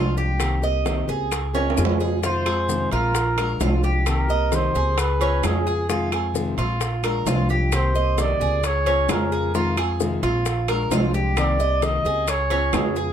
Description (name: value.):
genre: latin, Cuban son and guajira.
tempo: 131 BPM.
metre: 4/4.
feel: straight.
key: unclear.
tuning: A4 = 441 Hz.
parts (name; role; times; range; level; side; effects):
nylon-string guitar; accompaniment; 0.0-13.1 s; C3 to Ab4; -27 LUFS; left 4 dB; none.
Cuban tres; arpeggios; 0.0-13.1 s; Db4 to Eb5; -26 LUFS; right 2 dB; none.
upright bass; bass; 0.0-13.1 s; Bb1 to F2; -24 LUFS; equal; none.
bongos; percussion; 0.2-13.1 s; none; -32 LUFS; left 7 dB; none.
maracas; percussion; 0.2-13.1 s; none; -36 LUFS; left 8 dB; none.
claves; percussion; 0.4-13.0 s; none; -34 LUFS; left 4 dB; none.
timbales; percussion; 0.4-13.0 s; none; -29 LUFS; right 6 dB; none.
trumpet with bucket mute; melody; 2.3-13.1 s; Ab4 to Eb5; -24 LUFS; right 1 dB; none.
room: light reverb.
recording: close, detailed microphones.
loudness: -19 LUFS.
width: side -9 dB against mid.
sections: 0.0-13.1 A section.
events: muted trumpet solo 0.0-13.1; drum fill 1.5-2.2.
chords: 0.4 Cm7; 1.3 Db7; 2.2 Fm7; 3.1 Bb7; 4.1 Cm7; 5.0 Db7; 5.9 Fm7; 6.8 Bb7; 7.7 Cm7; 8.6 Db7; 9.5 Fm7; 10.5 Bb7; 11.4 Cm7; 12.3 Db7.